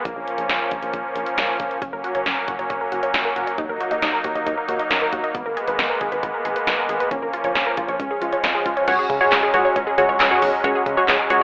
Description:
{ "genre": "synth-pop", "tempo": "136 BPM", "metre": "4/4", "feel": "straight", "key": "unclear", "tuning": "A4 = 438 Hz", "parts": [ { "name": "pipe organ, strings celeste", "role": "sustained chords", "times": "0.0-11.4 s", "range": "E#3 to D#4", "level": "-23 LUFS", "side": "equal", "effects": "none" }, { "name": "solid FM bass", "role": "bass", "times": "0.1-11.4 s", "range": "F#1 to C#3", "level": "-32 LUFS", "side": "equal", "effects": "none" }, { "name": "deep house drum kit", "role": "drums", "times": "0.1-11.4 s", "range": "crash cymbal, handclaps, hi-hat, kick drum, snare drum", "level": "-22 LUFS", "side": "equal", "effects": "none" }, { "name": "wide unison pluck", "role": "arpeggios", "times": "1.8-11.4 s", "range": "B3 to D#5", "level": "-24 LUFS", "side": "equal", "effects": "analog delay" }, { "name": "funky polysynth comp", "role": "accompaniment", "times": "8.9-11.4 s", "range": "F#4 to C#5", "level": "-18 LUFS", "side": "equal", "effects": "chorus" } ], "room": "moderate plate reverb, RT60 1.6 s, digital ambience", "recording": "telephone sound", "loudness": "-18 LUFS", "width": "side -37 dB against mid", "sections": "0.0-8.9 A section; 8.9-11.4 B section", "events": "none", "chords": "0.1 A#m; 1.8 F#; 3.6 D#m; 5.3 G#madd9; 7.1 A#m; 8.0 C#; 8.9 C#sus4" }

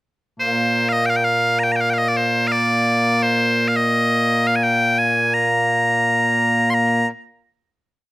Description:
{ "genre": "scottish traditional, Scottish pipe music", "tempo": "85 BPM", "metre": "2/4", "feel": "straight", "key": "Bb mixolydian", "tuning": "A4 = 441 Hz", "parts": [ { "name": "loud bright bagpipes", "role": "solo", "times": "0.4-7.1 s", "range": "Bb2 to C6", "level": "-15 LUFS", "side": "equal", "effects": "none" } ], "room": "little or no reverb", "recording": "recorded outdoors, with no room sound", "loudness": "-16 LUFS", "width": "side -19 dB against mid", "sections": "0.0-1.1 pickup bar; 1.1-6.7 A section; 6.7-8.1 final note", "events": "none", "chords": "none" }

